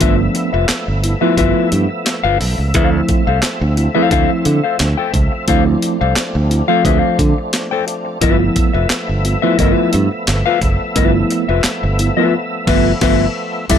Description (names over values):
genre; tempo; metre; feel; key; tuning
funk; 88 BPM; 4/4; straight; unclear; A4 = 440 Hz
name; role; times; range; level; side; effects
mellow electric guitar; accompaniment; 0.0-13.8 s; F4 to G5; -18 LUFS; left 11 dB; none
tonewheel organ; sustained chords; 0.0-13.8 s; C3 to E5; -23 LUFS; equal; overdrive, chorus vibrato, slow rotary speaker
mellow tine electric piano; stabs; 0.0-13.8 s; F3 to F4; -18 LUFS; right 4 dB; medium stereo tremolo
modern bright fingered electric bass; bass; 0.0-13.8 s; F1 to D3; -16 LUFS; right 1 dB; none
breakbeat sampler-style drum kit; drums; 0.0-13.8 s; crash cymbal, handclaps, hi-hat, kick drum, snare drum; -18 LUFS; right 1 dB; none
tambourine; percussion; 13.7-13.8 s; none; -27 LUFS; left 4 dB; none
room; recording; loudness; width
little or no reverb; none; -13 LUFS; side -8 dB against mid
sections
0.0-13.7 A section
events
band accent 12.3-13.7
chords
0.0 G13; 2.7 Dm7; 8.2 G13